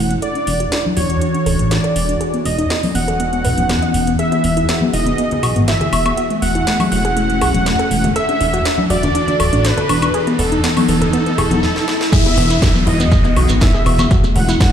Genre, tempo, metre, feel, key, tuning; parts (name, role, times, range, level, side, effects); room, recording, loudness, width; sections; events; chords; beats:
progressive house; 121 BPM; 4/4; straight; E major; A4 = 437 Hz
wide unison lead; melody; 0.0-14.7 s; A4 to F#5; -20 LUFS; right 1 dB; digital delay
evolving wavetable pad; sustained chords; 0.0-14.7 s; E3 to A4; -22 LUFS; equal; phaser, built-in reverb, sidechain pumping
soft round pluck; arpeggios; 0.0-14.7 s; A3 to D#5; -21 LUFS; left 1 dB; chorus, sidechain pumping, digital delay
fat analog bass; bass; 0.0-14.6 s; D1 to B1; -18 LUFS; equal; sidechain pumping
riser and downlifter; sound effects; 2.3-14.7 s; -26 LUFS; equal
house drum kit; drums; 0.1-14.7 s; crash cymbal, hi-hat, snare drum, woodblock; -23 LUFS; left 1 dB; overdrive, sidechain pumping on hats, high-pass filter on hats, high-pass filter on snare, sidechain pumping on perc, high-pass filter on perc, sidechain pumping on cymbals, high-pass filter on cymbals, high-pass filter on room
congas and bongos; percussion; 0.9-14.5 s; -23 LUFS; left 2 dB; sidechain pumping on perc
electronic kick drum; drums; 12.1-14.7 s; -14 LUFS; equal; overdrive
shekere; percussion; 12.1-14.7 s; -27 LUFS; right 6 dB
light reverb; played on a big sound system in a bare room, large studio reverb; -13 LUFS; side -9 dB against mid
0.0-12.1 A section; 12.1-14.7 B section
build-up 0.0-12.1; filter sweep on synth pluck 0.0-12.1; filter sweep on ambient pad 0.0-12.1; drum fill 11.6-12.1; drop 12.1-14.7
0.2 Dadd9/E; 2.2 Badd9/E; 4.2 Eadd9; 6.2 A/E; 8.2 Dadd9/E; 10.1 Badd9/E; 12.1 Eadd9; 14.1 A
| 0.22 0.72 1.22 1.71 | 2.21 2.70 3.20 3.69 | 4.19 4.69 5.18 5.68 | 6.17 6.67 7.17 7.66 | 8.16 8.65 9.15 9.65 | 10.14 10.64 11.13 11.63 | 12.12 12.62 13.12 13.61 | 14.11 14.60